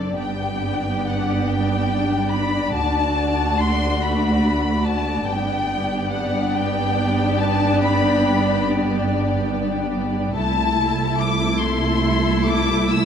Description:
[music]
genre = classical, slow romantic movement for string orchestra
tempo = 47 BPM (dotted quarters)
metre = 12/8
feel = rubato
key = G major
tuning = A4 = 440 Hz
[part]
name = warm studio violin section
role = melody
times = 0.0-13.1 s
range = D5 to E6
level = -24 LUFS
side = left 4 dB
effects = none
[part]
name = warm studio violin section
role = second line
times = 0.0-13.1 s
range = E4 to D5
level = -26 LUFS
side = left 4 dB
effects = none
[part]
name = warm studio viola section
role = accompaniment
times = 0.0-13.1 s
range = A3 to E4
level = -23 LUFS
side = equal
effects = none
[part]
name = dark studio cello section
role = bass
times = 0.0-13.1 s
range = C2 to G2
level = -26 LUFS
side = right 3 dB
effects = none
[part]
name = warm studio double bass section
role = bass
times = 0.0-13.1 s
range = F#1 to D2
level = -26 LUFS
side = right 3 dB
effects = none
[sound]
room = moderate scoring stage reverb, RT60 1.8 s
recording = dark, warm production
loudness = -18 LUFS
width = side -8 dB against mid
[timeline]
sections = 0.0-13.1 A section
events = none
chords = 0.2 G; 2.8 D; 5.3 G; 10.4 Am/C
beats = | 0.19 1.48 2.75 4.02 | 5.28 6.55 7.83 9.09 | 10.36 11.62 12.92

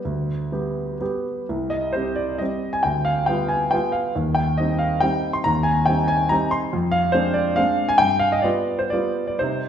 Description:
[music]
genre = classical, piano waltz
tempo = 120-148 BPM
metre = 3/4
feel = rubato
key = C minor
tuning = A4 = 441 Hz
[part]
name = clear concert grand piano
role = solo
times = 0.0-9.7 s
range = C2 to C6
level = -19 LUFS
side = equal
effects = none
[sound]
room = wet recital hall reverb, RT60 1.7 s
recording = heard from further back in the room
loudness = -19 LUFS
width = side -8 dB against mid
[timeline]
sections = 0.0-9.7 A section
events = none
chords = 0.0 G; 1.5 C5; 2.9 G7/D; 4.2 Cm/Eb; 6.7 Dm7b5/F; 8.0 G7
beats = | 0.06 0.52 1.01 | 1.49 1.95 2.40 | 2.85 3.28 3.73 | 4.16 4.59 5.03 | 5.46 5.88 6.31 | 6.73 7.14 7.58 | 8.01 8.44 8.92 | 9.40

